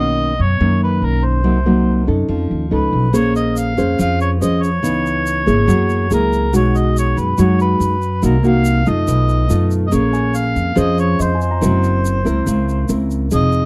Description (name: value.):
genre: bossa nova.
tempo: 142 BPM.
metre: 4/4.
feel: straight.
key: unclear.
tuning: A4 = 440 Hz.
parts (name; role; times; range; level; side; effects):
mellow harmonica; melody; 0.0-13.7 s; A#4 to F5; -24 LUFS; equal; slapback echo.
nylon-string guitar; accompaniment; 0.0-13.7 s; F#2 to C5; -20 LUFS; equal; none.
upright bass; bass; 0.0-13.7 s; F1 to F#2; -20 LUFS; equal; none.
tube shaker; percussion; 3.1-13.7 s; none; -37 LUFS; equal; none.
warm baby grand piano; accompaniment; 10.1-13.3 s; Eb5 to Bb5; -33 LUFS; equal; none.
room: little or no reverb.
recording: dry, close 1970s-style studio recording.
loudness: -16 LUFS.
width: mono.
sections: 0.0-13.7 A section.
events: none.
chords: 0.0 Bmaj9; 1.5 Cm7b5; 2.3 Faug7; 3.1 Bbm9; 4.8 Dbm9; 5.7 Gb9; 6.5 B6; 8.2 Cm7b5; 9.1 B7#11; 9.9 Bbm9; 11.6 Gb7#11.